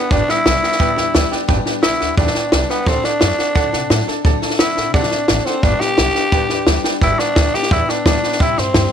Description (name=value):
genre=rockabilly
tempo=174 BPM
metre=4/4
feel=straight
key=G major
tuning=A4 = 440 Hz
part: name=growling tenor saxophone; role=melody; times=0.0-8.9 s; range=B3 to G4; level=-18 LUFS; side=equal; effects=none
part: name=clear upright piano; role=accompaniment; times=0.0-8.9 s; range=A4 to A5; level=-26 LUFS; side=right 13 dB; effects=none
part: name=picked steel-string acoustic guitar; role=accompaniment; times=0.0-8.9 s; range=G2 to A4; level=-25 LUFS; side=left 15 dB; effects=none
part: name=upright bass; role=bass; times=0.1-8.9 s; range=G1 to C3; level=-21 LUFS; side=right 1 dB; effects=none
part: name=compact cocktail drum kit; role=drums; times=0.1-8.8 s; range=hi-hat, kick drum, snare drum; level=-17 LUFS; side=equal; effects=none
room=studio ambience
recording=1960s-style stereo with parts hard left and right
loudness=-14 LUFS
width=side -8 dB against mid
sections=0.0-7.0 A section; 7.0-8.9 B section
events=drum fill 6.8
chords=0.0 G; 2.9 D7; 5.6 G; 8.4 C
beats=| 0.11 0.45 0.80 1.14 | 1.49 1.83 2.18 2.52 | 2.87 3.21 3.56 3.91 | 4.25 4.60 4.94 5.29 | 5.63 5.98 6.33 6.67 | 7.02 7.36 7.71 8.05 | 8.40 8.74